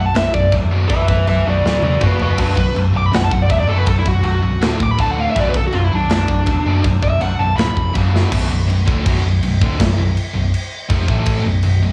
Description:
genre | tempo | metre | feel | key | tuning
heavy metal | 162 BPM | 4/4 | straight | B minor | A4 = 440 Hz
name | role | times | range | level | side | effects
high-gain lead guitar | melody | 0.0-7.9 s | D4 to D6 | -22 LUFS | equal | distortion, cassette tape
high-gain distorted guitar | riff | 0.0-11.9 s | B1 to A3 | -23 LUFS | equal | distortion, cassette tape
overdriven picked electric bass | bass | 0.0-11.9 s | B0 to A1 | -20 LUFS | equal | none
tight metal drum kit | drums | 0.1-11.7 s | china cymbal, crash cymbal, kick drum, snare drum, toms | -22 LUFS | equal | cassette tape
room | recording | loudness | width
small room ambience | home recording on cassette, studio reverb | -16 LUFS | mono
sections
0.0-8.3 A section; 8.3-11.9 B section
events
lead electric guitar solo 0.0-8.3; drum fill 1.6-2.4, 8.1; half time 8.3-11.9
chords
0.0 Bm; 2.0 F#5; 2.4 B5; 4.6 D5; 5.3 Bm; 7.9 F#5; 8.3 Bm; 11.1 A5

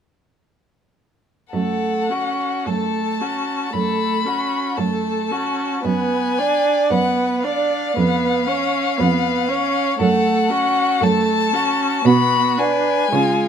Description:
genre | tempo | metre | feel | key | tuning
classical, slow romantic movement for string quartet | 52-60 BPM | 4/4 | rubato | F# minor | A4 = 440 Hz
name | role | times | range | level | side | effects
rich violin | melody | 1.5-13.5 s | E#5 to B5 | -22 LUFS | left 6 dB | none
clear violin | second line | 1.5-13.5 s | E#4 to D5 | -23 LUFS | left 1 dB | none
clear viola | accompaniment | 1.5-13.5 s | G#3 to D4 | -22 LUFS | right 5 dB | none
rich cello | bass | 1.5-13.5 s | E#2 to C#3 | -21 LUFS | right 4 dB | none
room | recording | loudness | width
light reverb | none | -17 LUFS | side -8 dB against mid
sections
1.5-13.5 A section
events
none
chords
1.5 F#m; 5.9 Bm/F#; 8.0 C#7/E#; 10.0 F#m; 12.1 Bm

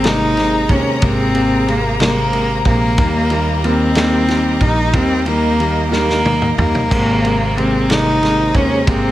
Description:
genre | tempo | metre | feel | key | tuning
six-eight pop ballad | 61 BPM (dotted quarters) | 6/8 | straight | Ab major | A4 = 440 Hz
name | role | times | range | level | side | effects
rich cello | melody | 0.0-9.1 s | Bb3 to Eb4 | -17 LUFS | equal | none
clear grand piano | accompaniment | 0.0-9.1 s | C3 to Bb3 | -19 LUFS | left 1 dB | none
rich studio string section | sustained chords | 0.0-9.1 s | G4 to Bb5 | -24 LUFS | equal | none
upright bass | bass | 0.0-9.1 s | Ab1 to Eb2 | -20 LUFS | equal | none
natural country drum kit | drums | 0.0-9.0 s | crash cymbal, kick drum, ride cymbal, snare drum, toms | -20 LUFS | equal | none
room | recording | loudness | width
light reverb, small room reverb | none | -13 LUFS | side -14 dB against mid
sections
0.0-9.1 A section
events
drum fill 5.9-6.9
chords
0.0 Abadd9; 3.0 Eb; 6.9 Abadd9

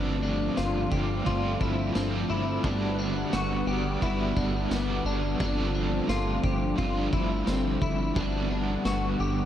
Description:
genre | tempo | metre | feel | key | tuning
dream pop | 87 BPM | 4/4 | straight | G major | A4 = 440 Hz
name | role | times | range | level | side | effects
crunchy overdriven guitar | accompaniment | 0.0-9.5 s | G3 to D5 | -32 LUFS | right 3 dB | tremolo, lush chorus
warm analog pad | sustained chords | 0.0-9.5 s | D3 to F#5 | -30 LUFS | left 1 dB | chorus
clean electric guitar | arpeggios | 0.0-9.5 s | B3 to G4 | -32 LUFS | left 3 dB | ensemble chorus, analog delay
plucky analog bass | bass | 0.0-9.5 s | G1 | -31 LUFS | equal | none
vintage drum kit | drums | 0.6-9.0 s | kick drum, ride cymbal, snare drum, tambourine | -34 LUFS | equal | none
room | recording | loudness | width
wet cathedral reverb, RT60 5.1 s | dreamy mix soaked in reverb | -25 LUFS | side -10 dB against mid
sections
0.0-9.5 A section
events
none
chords
0.0 Dm7/G; 2.6 Gmaj7; 5.4 Dm7/G; 8.2 Gmaj7

